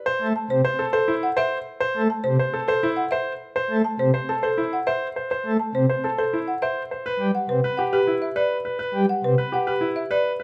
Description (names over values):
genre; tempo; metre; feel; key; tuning
classical, minimalist pattern music; 103 BPM; 3/4; straight; C lydian; A4 = 439 Hz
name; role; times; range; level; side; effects
bright grand piano; arpeggios; 0.1-10.4 s; E4 to C5; -27 LUFS; equal; none
pipe organ, principal chorus; accompaniment; 0.2-9.3 s; C3 to A3; -26 LUFS; equal; none
folk marimba with medium hard mallets; melody; 0.4-10.3 s; G4 to A5; -27 LUFS; equal; none
room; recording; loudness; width
moderate recital hall reverb, RT60 1.4 s; close, detailed microphones; -23 LUFS; mono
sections
0.0-10.4 A section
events
none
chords
0.1 C5; 7.1 Cmaj7(no3)